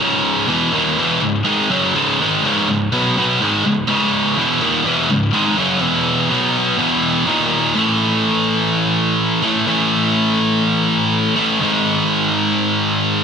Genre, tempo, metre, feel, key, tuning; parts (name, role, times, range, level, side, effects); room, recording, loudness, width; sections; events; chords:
metal; 124 BPM; 4/4; straight; C# minor; A4 = 440 Hz
scooped high-gain guitar; solo; 0.0-13.2 s; C#2 to B3; -14 LUFS; equal; distortion, dub echo
moderate spring reverb, RT60 1.2 s; echo-heavy mix; -14 LUFS; side -6 dB against mid
0.0-7.7 A section; 7.7-13.2 B section
0.0 C#m; 5.8 E5; 6.3 B5; 6.8 E5; 7.3 D#5; 7.7 A5; 11.6 G#5